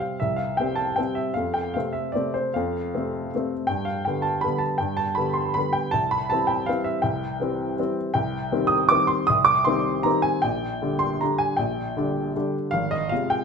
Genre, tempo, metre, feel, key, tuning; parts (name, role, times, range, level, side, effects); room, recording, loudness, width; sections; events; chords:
classical, piano waltz; 142-169 BPM; 3/4; rubato; C major, C minor from 8.2 s; A4 = 440 Hz
warm upright piano; solo; 0.0-13.4 s; Ab1 to Eb6; -22 LUFS; equal
wet large studio reverb, RT60 1.3 s; minimal, uncompressed stereo recording; -22 LUFS; side -6 dB against mid
0.0-13.4 A section
0.0 C5; 1.4 F; 3.7 G; 5.9 C; 8.2 Cm; 10.4 Gm/Bb; 12.7 Fm/Ab